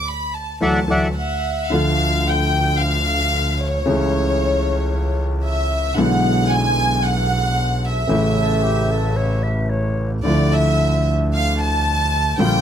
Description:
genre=tango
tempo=112 BPM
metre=4/4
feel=rubato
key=D harmonic minor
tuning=A4 = 436 Hz
part: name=warm chamber violin section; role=second line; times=0.0-12.6 s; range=C#5 to B5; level=-21 LUFS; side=equal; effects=none
part: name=bandoneon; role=melody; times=0.6-1.1 s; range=D5 to F#5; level=-20 LUFS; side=left 1 dB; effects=none
part: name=warm concert grand piano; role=accompaniment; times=0.6-12.6 s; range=A1 to F4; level=-21 LUFS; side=left 1 dB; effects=none
part: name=clear double bass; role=bass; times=0.6-12.6 s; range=A1 to D2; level=-21 LUFS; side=right 1 dB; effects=none
part: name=concert flute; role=second line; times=8.4-10.1 s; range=G4 to E5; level=-27 LUFS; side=left 3 dB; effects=none
room=light reverb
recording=close, detailed microphones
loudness=-16 LUFS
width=side -9 dB against mid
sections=0.0-1.7 A section; 1.7-12.6 B section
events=band accent 0.0-1.7; violin section solo 1.7-12.6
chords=0.0 Dadd9; 1.7 Dm; 3.9 A/C#; 6.0 E7/B; 8.1 A; 10.3 Dmadd9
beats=0.07 0.61 1.16 | 1.72 2.26 2.80 3.34 | 3.88 4.41 4.93 5.46 | 5.99 6.51 7.04 7.58 | 8.11 8.64 9.17 9.71 | 10.25 10.79 11.33 11.86 | 12.39

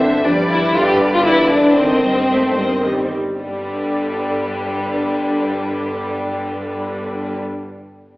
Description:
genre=quick classical-period movement for symphony orchestra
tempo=114 BPM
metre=3/4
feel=uneven beats, rubato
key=G major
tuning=A4 = 440 Hz
part: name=rich studio violin section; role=melody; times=0.0-7.4 s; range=B4 to E5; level=-27 LUFS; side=left 1 dB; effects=none
part: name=warm studio viola section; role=accompaniment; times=0.0-7.4 s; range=D3 to C5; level=-21 LUFS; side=equal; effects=none
part: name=warm studio cello section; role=bass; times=0.0-7.4 s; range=G2 to A3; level=-25 LUFS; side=equal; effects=none
part: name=warm studio double bass section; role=bass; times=0.0-7.4 s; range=G1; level=-29 LUFS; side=equal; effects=none
part: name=rich studio violin section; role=second line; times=0.2-7.4 s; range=G3 to G4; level=-18 LUFS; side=left 1 dB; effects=none
room=wet recital hall reverb, RT60 1.4 s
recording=heard from further back in the room, AM radio sound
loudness=-15 LUFS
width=side -20 dB against mid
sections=0.0-3.4 A section; 3.4-6.6 B section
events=slowing down 0.0-3.4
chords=0.2 G7; 1.8 Cm/G; 3.4 G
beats=| 0.25 0.76 1.26 | 1.78 2.30 2.83 | 3.39 3.92 4.46 | 5.00 5.55 6.09

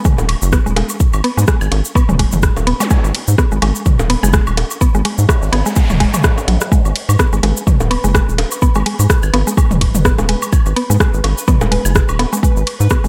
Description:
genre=minimal techno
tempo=126 BPM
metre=4/4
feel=swing 57% on 16ths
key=G# minor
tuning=A4 = 440 Hz
part: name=tube shaker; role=percussion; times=0.0-13.1 s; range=none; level=-28 LUFS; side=equal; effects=none
part: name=mallet-like synth pluck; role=riff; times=0.1-13.1 s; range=F#3 to B3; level=-23 LUFS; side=equal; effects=chorus, sidechain pumping, tape echo
part: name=electronic kick drum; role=drums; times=0.1-13.0 s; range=none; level=-16 LUFS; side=equal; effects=studio ambience
part: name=electronic toms, woodblock and bongos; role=percussion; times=0.1-13.0 s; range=none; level=-25 LUFS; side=equal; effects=studio ambience, tape echo
part: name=rubbery square bass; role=bass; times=0.2-13.1 s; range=D#1 to G#2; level=-18 LUFS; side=equal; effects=sidechain pumping
part: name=house drum kit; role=drums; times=0.3-13.0 s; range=hi-hat, ride cymbal, rim click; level=-24 LUFS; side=equal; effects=studio ambience
part: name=zap and noise sweep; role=sound effects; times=2.8-6.7 s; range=none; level=-29 LUFS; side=equal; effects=none
part: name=pulsing gated texture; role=texture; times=7.1-13.1 s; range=B4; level=-31 LUFS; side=equal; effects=chorus, built-in reverb, sidechain pumping
room=light reverb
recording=none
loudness=-14 LUFS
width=mono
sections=0.0-13.1 A section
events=noise sweep 5.0-6.7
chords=0.0 G#m7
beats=0.05 0.53 | 1.00 1.48 1.96 2.43 | 2.91 3.38 3.86 4.34 | 4.81 5.29 5.76 6.24 | 6.72 7.19 7.67 8.14 | 8.62 9.10 9.57 10.05 | 10.53 11.00 11.48 11.96 | 12.43 12.91

